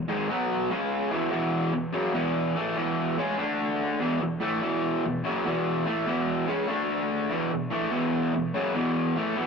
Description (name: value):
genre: rock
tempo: 145 BPM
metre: 4/4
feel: straight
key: E major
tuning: A4 = 440 Hz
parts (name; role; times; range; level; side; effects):
- raw garage guitar; solo; 0.0-9.5 s; E2 to D4; -25 LUFS; equal; overdrive, analog delay
room: moderate small room reverb, RT60 0.5 s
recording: rough rehearsal-room recording, tube saturation, nothing above 7.5 kHz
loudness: -25 LUFS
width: side -5 dB against mid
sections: 0.0-1.3 A section; 1.3-9.5 B section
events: none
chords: 0.3 B5; 0.7 C#5; 1.1 E5; 3.4 D5; 4.0 E5; 6.7 D5; 7.3 E5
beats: 0.08 0.49 0.91 | 1.32 1.73 2.14 2.55 | 2.97 3.38 3.79 4.21 | 4.62 5.03 5.45 5.86 | 6.27 6.68 7.10 7.51 | 7.92 8.34 8.75 9.16